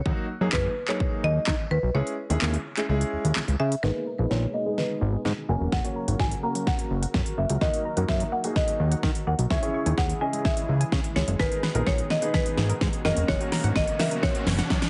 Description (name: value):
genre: dance-pop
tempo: 127 BPM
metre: 4/4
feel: straight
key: G# minor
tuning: A4 = 440 Hz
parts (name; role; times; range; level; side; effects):
- marimba with medium hard mallets; melody; 0.0-14.7 s; B4 to A#5; -32 LUFS; equal; low-pass filter
- clear concert grand piano; accompaniment; 0.1-14.5 s; F#3 to D#5; -34 LUFS; equal; sidechain pumping, low-pass filter
- fat analog bass; bass; 0.1-14.8 s; E1 to D#3; -28 LUFS; equal; sidechain pumping
- pop drum kit; drums; 0.1-14.9 s; handclaps, hi-hat, kick drum, snare drum; -29 LUFS; equal; none
- soft supersaw; sustained chords; 3.8-14.9 s; B2 to A#4; -39 LUFS; equal; sidechain pumping, low-pass filter
- hollow square pluck; arpeggios; 3.8-14.7 s; F#3 to G#6; -41 LUFS; equal; none
- riser; sound effects; 12.9-14.9 s; none; -40 LUFS; equal; none
room: light reverb, digital ambience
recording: heavily compressed radio sound, multiband compression, nothing above 10.7 kHz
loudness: -26 LUFS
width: mono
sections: 0.0-3.8 A section; 3.8-14.9 B section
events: kick muted 1.9-3.8; build-up 3.8-14.9; drum fill 3.8-14.9; filter sweep 3.8-14.9; riser 12.9-14.9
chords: 0.1 D#m; 1.9 C#m; 3.8 G#madd9; 5.5 F#; 7.6 D#m; 9.5 C#m; 11.4 G#madd9; 13.0 F#